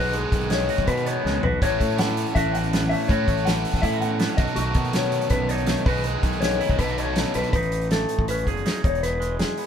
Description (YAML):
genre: math rock and midwest emo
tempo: 162 BPM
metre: 4/4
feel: straight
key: A lydian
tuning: A4 = 442 Hz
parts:
  - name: twangy electric guitar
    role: accompaniment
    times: 0.0-9.7 s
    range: E2 to G#4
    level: -30 LUFS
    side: right 6 dB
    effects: none
  - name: mellow electric guitar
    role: arpeggios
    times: 0.0-9.7 s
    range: F#4 to F#5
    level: -26 LUFS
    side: left 4 dB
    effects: none
  - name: biting overdriven guitar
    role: riff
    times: 0.0-7.5 s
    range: A2 to A4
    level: -28 LUFS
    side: right 2 dB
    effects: none
  - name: fuzz fingered electric bass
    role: bass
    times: 0.0-9.4 s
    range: E1 to B2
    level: -27 LUFS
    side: equal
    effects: overdrive
  - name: loose indie drum kit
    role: drums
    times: 0.1-9.7 s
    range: hi-hat, kick drum, snare drum, toms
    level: -25 LUFS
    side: equal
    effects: none
room: moderate stone room reverb, RT60 1.1 s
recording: band playing live in one room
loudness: -20 LUFS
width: side -8 dB against mid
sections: 0.0-7.5 A section; 7.5-9.7 B section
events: drum fill 1.3-1.6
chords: 0.0 G#m7/B; 1.6 A6; 4.4 B7; 5.9 G#m7/B; 6.8 B7; 7.5 Amaj9#11; 8.8 Emaj7